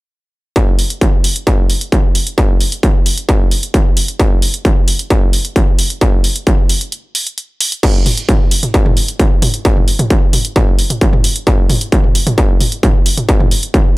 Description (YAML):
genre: techno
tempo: 132 BPM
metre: 4/4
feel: straight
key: none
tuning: none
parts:
  - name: electronic kick drum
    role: drums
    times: 0.6-13.8 s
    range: none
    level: -11 LUFS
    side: equal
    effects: distortion
  - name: punchy analog drum machine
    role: drums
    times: 0.6-13.8 s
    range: crash cymbal, hi-hat, toms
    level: -17 LUFS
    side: right 1 dB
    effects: sidechain pumping on hats, sidechain pumping on cymbals, sidechain pumping on toms
room: little or no reverb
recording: none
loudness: -11 LUFS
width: side -21 dB against mid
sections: 0.6-7.8 A section; 7.8-14.0 B section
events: break 6.9-7.8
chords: none